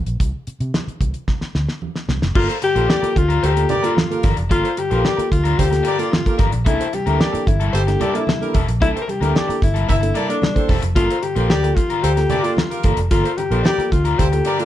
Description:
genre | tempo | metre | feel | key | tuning
funk | 112 BPM | 4/4 | straight | G dorian | A4 = 440 Hz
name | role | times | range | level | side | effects
vintage muted fingered electric bass | bass | 0.0-14.4 s | E1 to C3 | -20 LUFS | equal | none
damped 70s drum kit | drums | 0.1-14.7 s | crash cymbal, hi-hat, kick drum, snare drum | -20 LUFS | equal | none
congas | percussion | 0.2-14.3 s | none | -30 LUFS | right 6 dB | none
breathy alto saxophone | melody | 2.4-14.7 s | D4 to Bb4 | -21 LUFS | left 4 dB | none
overdriven electric guitar | accompaniment | 2.4-14.6 s | Bb3 to C5 | -26 LUFS | left 8 dB | none
mellow reed electric piano | stabs | 2.4-14.7 s | G2 to A4 | -26 LUFS | right 4 dB | fast tremolo
warm horn section | second line | 2.5-14.7 s | D4 to E5 | -27 LUFS | right 3 dB | none
room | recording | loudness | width
light reverb | dark, warm production | -16 LUFS | side -12 dB against mid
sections
0.0-2.4 A section; 2.4-14.7 B section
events
drum fill 1.3-2.4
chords
0.0 N.C.; 2.4 Gm7; 6.7 C13; 11.0 Gm7

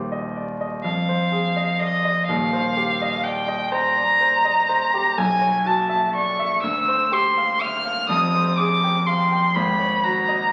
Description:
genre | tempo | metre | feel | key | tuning
classical, impressionist duo for violin and grand piano | 41 BPM (dotted quarters) | 6/8 | rubato | unclear | A4 = 440 Hz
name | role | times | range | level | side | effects
warm grand piano | accompaniment | 0.0-10.5 s | Eb1 to G5 | -26 LUFS | equal | none
rich violin | melody | 0.8-10.5 s | Eb5 to F6 | -22 LUFS | equal | none
room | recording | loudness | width
wet recital hall reverb, RT60 1.5 s | very old 78 rpm record, vinyl crackle | -21 LUFS | mono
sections
0.0-10.5 A section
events
none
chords
0.0 Eb6; 0.8 Fm7; 2.3 Eb6; 5.2 Bmadd9; 6.6 Dm11; 8.1 Fmadd9; 9.6 G#7sus4

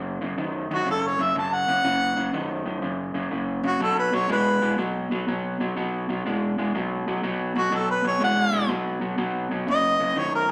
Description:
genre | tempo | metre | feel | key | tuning
blues | 122 BPM | 4/4 | swing 67% on 8ths | unclear | A4 = 440 Hz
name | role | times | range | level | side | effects
electric guitar through a small old amp | riff | 0.0-10.5 s | F#2 to G#3 | -28 LUFS | equal | none
mellow harmonica | melody | 0.7-10.5 s | F#4 to A5 | -25 LUFS | equal | none
room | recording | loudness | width
wet large studio reverb, RT60 1.2 s | band playing live in one room | -25 LUFS | mono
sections
0.0-10.5 A section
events
none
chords
0.0 F#5; 3.8 B5; 9.7 F#5

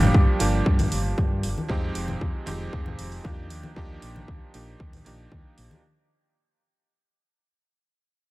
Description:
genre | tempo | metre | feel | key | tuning
nu-disco, nu disco | 116 BPM | 4/4 | straight | unclear | A4 = 439 Hz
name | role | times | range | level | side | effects
bright electric grand piano | accompaniment | 0.0-5.8 s | F3 to G4 | -29 LUFS | right 2 dB | dub echo
fingered electric bass with an envelope filter | bass | 0.0-5.7 s | F1 to G2 | -28 LUFS | equal | none
congas | percussion | 0.0-5.8 s | none | -29 LUFS | left 1 dB | none
electronic kick drum | drums | 0.1-5.4 s | none | -24 LUFS | equal | overdrive
electronic hi-hat | drums | 0.4-5.7 s | none | -36 LUFS | right 3 dB | overdrive
room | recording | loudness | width
little or no reverb | none | -22 LUFS | side -19 dB against mid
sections
0.0-5.8 A section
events
fade-out 0.0-5.8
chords
0.0 Gm7; 1.7 Fm7; 3.5 Ebmaj7

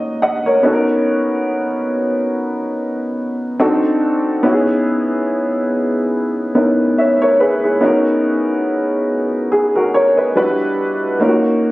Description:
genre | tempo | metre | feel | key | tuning
R&B | 71 BPM | 4/4 | swing 56% on 16ths | B major | A4 = 439 Hz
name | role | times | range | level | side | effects
warm upright piano | solo | 0.0-11.7 s | G3 to F#5 | -14 LUFS | equal | slapback echo
room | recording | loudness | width
light reverb | recorded on a phone in the room, club reverb, compression | -14 LUFS | side -18 dB against mid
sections
0.0-11.7 A section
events
none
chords
0.0 D#m7; 0.6 Bmaj9; 3.6 Cdim7; 4.4 C#m9; 10.4 Em7; 11.2 D#m7

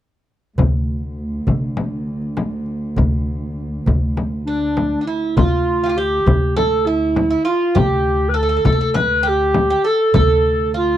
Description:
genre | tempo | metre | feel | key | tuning
Turkish makam ensemble | 100 BPM | 4/4 | straight | D makam huseyni | A4 = 440 Hz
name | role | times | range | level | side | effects
upright bass | bass | 0.6-11.0 s | D2 to D3 | -21 LUFS | equal | none
muted cello | drone | 0.6-5.4 s | D2 | -27 LUFS | right 1 dB | none
darbuka | percussion | 0.6-10.7 s | none | -22 LUFS | right 1 dB | none
frame drum | percussion | 0.6-10.3 s | none | -20 LUFS | left 3 dB | none
dark clarinet | melody | 4.5-11.0 s | D4 to B4-28c | -17 LUFS | equal | none
Greek bouzouki | second line | 4.5-11.0 s | D4 to B4-30c | -22 LUFS | right 4 dB | none
room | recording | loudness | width
studio reverb | dry, close 1970s-style studio recording | -15 LUFS | side -11 dB against mid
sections
0.6-5.4 A section; 5.4-11.0 B section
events
none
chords
none

